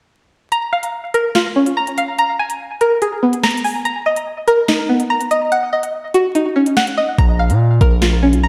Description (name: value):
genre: hip hop, drill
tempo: 144 BPM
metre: 4/4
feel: half-time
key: Bb phrygian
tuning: A4 = 440 Hz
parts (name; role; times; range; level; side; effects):
- string-like resonator pluck; arpeggios; 0.5-8.5 s; Cb4 to Bb5; -18 LUFS; equal; chorus, analog delay
- drill drum kit; drums; 0.5-8.4 s; hi-hat, kick drum, snare drum; -21 LUFS; equal; none
- distorted 808-style bass; bass; 7.2-8.5 s; Bb1 to Bb2; -16 LUFS; equal; distortion
room: wet lush hall reverb, RT60 1.6 s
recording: dreamy mix soaked in reverb, vinyl crackle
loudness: -16 LUFS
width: mono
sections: 0.5-8.5 A section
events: kick muted 0.5-7.2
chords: 0.5 Bbm; 2.2 Abmadd9; 3.9 Bmaj7; 5.5 Ebm7; 7.2 Bbm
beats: | 0.52 0.94 1.35 1.77 | 2.19 2.60 3.02 3.44 | 3.85 4.27 4.68 5.10 | 5.52 5.93 6.35 6.77 | 7.18 7.60 8.02 8.44